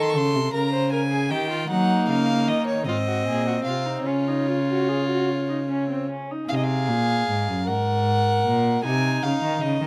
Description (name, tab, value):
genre	classical, baroque-style fugue for string quartet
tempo	51 BPM (dotted quarters)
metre	6/8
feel	straight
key	Db major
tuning	A4 = 441 Hz
part	warm violin	melody	0.0-9.9 s	Db5 to Db6	-30 LUFS	equal	none
part	warm violin	second line	0.0-9.9 s	Eb4 to C5	-30 LUFS	equal	none
part	rich cello	bass	0.0-9.9 s	Gb2 to Gb3	-26 LUFS	equal	none
part	warm viola	accompaniment	1.7-6.5 s	Bb3 to Ab4	-30 LUFS	equal	none
room	light reverb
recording	close, detailed microphones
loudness	-23 LUFS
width	mono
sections	0.0-6.5 A section; 6.5-9.9 B section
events	none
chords	0.0 F7 (rootless); 0.5 Bbm/Db; 1.7 Ebm7; 2.9 Ab; 4.1 Db; 6.5 Gbmaj9#11; 7.7 Gb; 8.8 Ab/C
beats	0.54 | 1.70 2.88 | 4.06 5.28 | 6.49 7.67 | 8.84